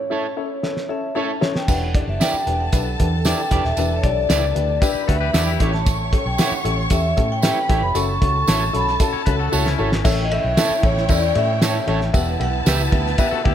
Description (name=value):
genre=uptempo 1960s-style soul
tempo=115 BPM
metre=4/4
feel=straight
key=unclear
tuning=A4 = 440 Hz
part: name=vibraphone with medium hard mallets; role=melody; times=0.0-13.5 s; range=C#5 to C#6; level=-24 LUFS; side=equal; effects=none
part: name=warm upright piano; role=accompaniment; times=0.0-13.5 s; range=A2 to A5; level=-26 LUFS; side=left 6 dB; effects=none
part: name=electric guitar at the edge of break-up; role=stabs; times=0.1-12.8 s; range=E4 to E5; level=-28 LUFS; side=right 5 dB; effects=none
part: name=cloth-damped thuddy drum kit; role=drums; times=0.6-13.5 s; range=crash cymbal, hi-hat, kick drum, ride cymbal, snare drum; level=-21 LUFS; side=right 1 dB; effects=none
part: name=warm studio string section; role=second line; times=1.7-13.5 s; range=E4 to C#6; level=-28 LUFS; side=equal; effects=none
part: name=vintage muted fingered electric bass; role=bass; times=1.7-13.5 s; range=Eb1 to A2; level=-22 LUFS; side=right 1 dB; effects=none
part: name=tambourine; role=percussion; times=1.7-13.3 s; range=none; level=-32 LUFS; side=right 6 dB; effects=none
part: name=twangy electric guitar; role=riff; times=4.8-5.7, 9.1-10.0, 13.2-13.5 s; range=C#4 to C#5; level=-28 LUFS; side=left 10 dB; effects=none
room=light reverb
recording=none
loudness=-17 LUFS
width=side -10 dB against mid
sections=0.0-1.7 A section; 1.7-10.1 B section; 10.1-13.5 C section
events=break 0.0-1.7; upright piano fill 0.6-1.7; drum fill 0.6-1.7, 9.5-10.1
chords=0.0 A; 1.7 Em7; 5.6 A7; 8.0 F#m7; 10.1 A; 12.1 Em